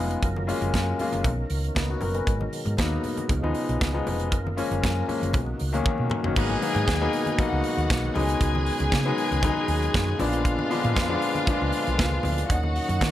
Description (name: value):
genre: disco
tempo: 117 BPM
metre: 4/4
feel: straight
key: G# dorian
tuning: A4 = 437 Hz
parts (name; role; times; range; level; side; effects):
- warm baby grand piano; accompaniment; 0.0-12.5 s; D#3 to B4; -28 LUFS; left 4 dB; none
- percussive tonewheel organ; sustained chords; 0.0-13.1 s; A#2 to A#4; -33 LUFS; right 1 dB; overdrive, chorus vibrato, slow rotary speaker
- hollow-body short-scale fingered electric bass; bass; 0.0-13.1 s; E#1 to D#3; -27 LUFS; equal; none
- modern studio drum kit; drums; 0.1-13.1 s; crash cymbal, hi-hat, kick drum, snare drum, toms; -28 LUFS; right 1 dB; none
- congas; percussion; 0.4-13.1 s; none; -36 LUFS; left 2 dB; none
- dark chamber string section; second line; 6.4-13.1 s; E#4 to G#5; -29 LUFS; equal; none
room: small room ambience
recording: none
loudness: -22 LUFS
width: side -13 dB against mid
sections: 0.0-6.4 A section; 6.4-13.1 B section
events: drum fill 5.9-6.4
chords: 0.2 F#maj7; 1.2 Bmaj9; 2.3 G#m9; 3.3 C#9; 4.3 F#maj7; 5.3 Bmaj9; 6.4 G#m7; 8.2 C#9sus4; 10.2 A#7b9; 12.5 D#m7